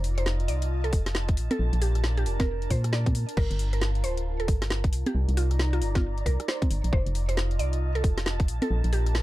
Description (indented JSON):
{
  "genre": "UK garage, two-step garage",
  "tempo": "135 BPM",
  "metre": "4/4",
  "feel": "swing 62% on 16ths",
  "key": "unclear",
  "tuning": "A4 = 439 Hz",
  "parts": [
    { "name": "organ-like FM bass", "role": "bass", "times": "0.0-9.2 s", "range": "D1 to Bb2", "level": "-26 LUFS", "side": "equal", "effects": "none" },
    { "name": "garage drum kit", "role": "drums", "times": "0.0-9.2 s", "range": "congas, crash cymbal, hi-hat, rim click, snare drum", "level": "-32 LUFS", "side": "equal", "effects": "none" },
    { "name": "airy breathy pad", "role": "texture", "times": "0.0-9.2 s", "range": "D4 to Bb5", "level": "-37 LUFS", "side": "right 1 dB", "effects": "chorus, sidechain pumping" },
    { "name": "mallet-like synth pluck", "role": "melody", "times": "0.2-9.1 s", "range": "F4 to D5", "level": "-35 LUFS", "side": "right 1 dB", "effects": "chorus, digital delay" },
    { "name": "electronic kick drum", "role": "drums", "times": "0.9-8.5 s", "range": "none", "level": "-25 LUFS", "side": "equal", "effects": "none" }
  ],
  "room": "little or no reverb",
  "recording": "dark, warm production",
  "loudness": "-24 LUFS",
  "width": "side -16 dB against mid",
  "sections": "0.0-9.2 A section",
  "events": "none",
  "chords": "0.0 F7; 1.4 Bbmaj7; 3.4 Gm9; 4.9 Cm9; 6.9 F7; 8.5 Bbmaj7"
}